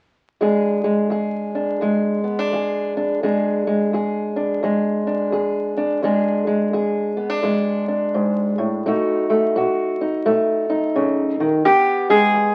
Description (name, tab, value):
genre	acoustic country blues, solo or duo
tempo	85 BPM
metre	4/4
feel	swing 62% on 8ths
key	E mixolydian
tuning	A4 = 441 Hz
part	fingerpicked old ladder-braced acoustic guitar	accompaniment	0.4-12.5 s	E2 to G#4	-21 LUFS	equal	none
part	lap resonator guitar	melody	11.7-12.5 s	G4 to G#4	-16 LUFS	equal	none
room	wet small room reverb, RT60 0.5 s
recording	very old 78 rpm record, vinyl crackle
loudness	-20 LUFS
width	mono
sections	0.4-11.6 A section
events	none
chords	0.4 E7; 8.8 B7; 11.6 E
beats	| 0.41 1.11 1.81 2.52 | 3.22 3.92 4.63 5.33 | 6.03 6.74 7.44 8.14 | 8.84 9.54 10.24 10.94 | 11.64 12.34